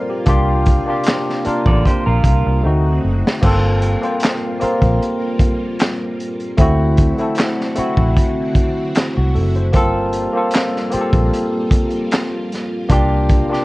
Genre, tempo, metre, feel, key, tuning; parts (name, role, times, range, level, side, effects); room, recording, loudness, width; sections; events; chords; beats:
R&B, neo-soul; 76 BPM; 4/4; swing 53% on 16ths; G dorian; A4 = 440 Hz
barky tine electric piano; accompaniment; 0.0-13.6 s; A3 to D5; -19 LUFS; left 1 dB; lush chorus
string machine, full ensemble; sustained chords; 0.0-13.6 s; C3 to F#4; -27 LUFS; right 1 dB; ensemble chorus
vintage muted fingered electric bass; bass; 0.3-13.4 s; F#1 to D2; -16 LUFS; equal
crunchy breakbeat drum kit; drums; 0.3-13.6 s; crash cymbal, handclaps, hi-hat, kick drum, snare drum; -16 LUFS; equal
electric guitar through a small old amp; second line; 1.7-2.6 s; F4 to D5; -21 LUFS; right 3 dB
light reverb; worn, warbling old tape, cassette tape, warbly pitch drift, nothing above 10.3 kHz; -14 LUFS; side -20 dB against mid
0.0-3.4 A section; 3.4-13.6 A section
drum fill 2.6-3.4
0.3 C7sus4; 2.6 D7b9; 3.4 Gm11; 6.6 D9; 9.7 Gm11; 12.9 C7sus4
| 0.27 1.06 1.85 2.63 | 3.42 4.21 5.00 5.79 | 6.58 7.37 8.16 8.95 | 9.74 10.53 11.32 12.11 | 12.90